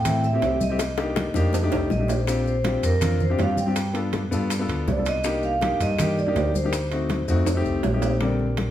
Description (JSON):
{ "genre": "Afro-Cuban jazz", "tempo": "162 BPM", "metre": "4/4", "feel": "straight", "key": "unclear", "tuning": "A4 = 440 Hz", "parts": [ { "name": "vibraphone with medium mallets", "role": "melody", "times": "0.0-8.0 s", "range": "Bb4 to G5", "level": "-27 LUFS", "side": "right 2 dB", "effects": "none" }, { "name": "growling FM bass", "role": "bass", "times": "0.0-8.7 s", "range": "Bb1 to A2", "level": "-25 LUFS", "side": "equal", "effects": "none" }, { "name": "warm baby grand piano", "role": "accompaniment", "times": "0.1-8.7 s", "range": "D3 to D5", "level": "-26 LUFS", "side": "left 3 dB", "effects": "none" }, { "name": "bongos", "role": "percussion", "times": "0.1-8.7 s", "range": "none", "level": "-34 LUFS", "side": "left 6 dB", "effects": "none" }, { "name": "congas", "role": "percussion", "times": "0.1-8.7 s", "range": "none", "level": "-30 LUFS", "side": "equal", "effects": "none" }, { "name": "maracas", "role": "percussion", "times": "0.1-8.2 s", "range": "none", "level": "-39 LUFS", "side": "left 6 dB", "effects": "none" }, { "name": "timbales", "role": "percussion", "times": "0.1-8.7 s", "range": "none", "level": "-32 LUFS", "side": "right 4 dB", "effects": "none" } ], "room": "wet large studio reverb, RT60 1.2 s", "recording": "heard from further back in the room", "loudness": "-21 LUFS", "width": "side -12 dB against mid", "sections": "0.0-8.2 A section", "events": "drum fill 0.8-2.3, 7.5-8.2", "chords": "0.0 Fmaj9 (rootless); 0.8 Cm9; 1.5 F13; 2.3 Bb69; 3.8 G7; 5.2 Cm9; 6.7 D7b9; 7.5 F7" }